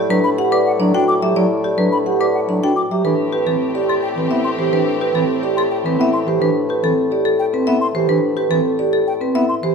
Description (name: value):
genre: classical, minimalist pattern music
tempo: 107 BPM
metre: 3/4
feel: straight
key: A dorian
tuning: A4 = 439 Hz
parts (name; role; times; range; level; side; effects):
- marimba with medium hard mallets; melody; 0.0-9.7 s; G4 to G5; -20 LUFS; left 8 dB; none
- vibraphone with medium mallets; arpeggios; 0.0-9.7 s; C4 to D5; -19 LUFS; right 6 dB; none
- mellow bassoon; bass; 0.0-9.6 s; A2; -23 LUFS; equal; none
- warm bass clarinet; accompaniment; 0.1-9.7 s; E3 to D4; -23 LUFS; right 1 dB; none
- mellow hollow silver concert flute; arpeggios; 0.2-9.5 s; F#5 to D6; -25 LUFS; left 2 dB; none
- rich symphonic string section; sustained chords; 3.0-6.2 s; C4 to G4; -28 LUFS; left 1 dB; none
room: moderate recital hall reverb, RT60 1.6 s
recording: minimal, uncompressed stereo recording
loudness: -15 LUFS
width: side -5 dB against mid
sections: 0.0-9.7 A section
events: none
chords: 0.0 Emadd9/A (rootless); 3.0 Am9